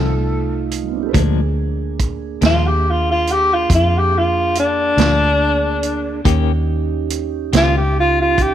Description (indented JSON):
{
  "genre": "slow blues",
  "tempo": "47 BPM (dotted quarters)",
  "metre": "12/8",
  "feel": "straight",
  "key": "Bb mixolydian",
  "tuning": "A4 = 439 Hz",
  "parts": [
    { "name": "breathy tenor saxophone", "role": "melody", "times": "0.0-8.5 s", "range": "D4 to A4", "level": "-16 LUFS", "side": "left 1 dB", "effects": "slapback echo" },
    { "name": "clean electric guitar", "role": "accompaniment", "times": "0.0-7.8 s", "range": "F2 to G4", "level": "-24 LUFS", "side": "left 12 dB", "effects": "tremolo" },
    { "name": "mellow tonewheel organ", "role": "sustained chords", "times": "0.0-8.5 s", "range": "G3 to C5", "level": "-25 LUFS", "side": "right 12 dB", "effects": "slow rotary speaker" },
    { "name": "vintage muted fingered electric bass", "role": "bass", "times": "0.0-8.5 s", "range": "C2 to F2", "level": "-19 LUFS", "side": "equal", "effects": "transformer saturation" },
    { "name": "vintage drum kit", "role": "drums", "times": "0.7-8.5 s", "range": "hi-hat, kick drum, snare drum", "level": "-20 LUFS", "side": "right 3 dB", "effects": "none" }
  ],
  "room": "light reverb",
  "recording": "1960s-style stereo with parts hard left and right",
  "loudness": "-14 LUFS",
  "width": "side -10 dB against mid",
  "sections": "0.0-1.1 A section; 1.1-8.5 B section",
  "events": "tenor saxophone solo 1.1-8.5",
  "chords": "0.0 F7; 1.1 Bb7; 6.3 Eb7"
}